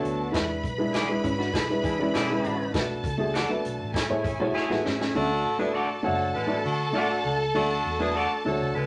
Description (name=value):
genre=uptempo 1960s-style soul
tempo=100 BPM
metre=4/4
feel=straight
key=unclear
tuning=A4 = 435 Hz
part: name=bright saxophone section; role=second line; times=0.0-8.9 s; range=D3 to C#5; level=-32 LUFS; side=equal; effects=none
part: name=rich symphonic violin section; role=second line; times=0.0-8.9 s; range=E4 to B5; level=-35 LUFS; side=equal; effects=none
part: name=dark upright piano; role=accompaniment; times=0.0-8.8 s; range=D3 to F#5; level=-31 LUFS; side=equal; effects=none
part: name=hollow-body jazz guitar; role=riff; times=0.0-5.3 s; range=A3 to B4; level=-34 LUFS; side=equal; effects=none
part: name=vintage muted fingered electric bass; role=bass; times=0.0-8.9 s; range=F#1 to E3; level=-37 LUFS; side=equal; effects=none
part: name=swinging big-band drum kit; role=drums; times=0.0-5.1 s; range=hi-hat, kick drum, snare drum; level=-33 LUFS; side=equal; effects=none
part: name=electric guitar through a small old amp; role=stabs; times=0.9-8.3 s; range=E4 to D5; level=-33 LUFS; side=equal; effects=none
room=wet studio reverb, RT60 0.6 s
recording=none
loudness=-26 LUFS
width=mono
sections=0.0-5.1 A section; 5.1-8.9 B section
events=drum fill 4.5-5.1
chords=0.3 E7; 2.7 Bm7; 3.9 Amaj7; 5.1 D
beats=| 0.34 0.94 1.54 2.14 | 2.74 3.34 3.94 4.55 | 5.15 5.75 6.35 6.95 | 7.55 8.15 8.76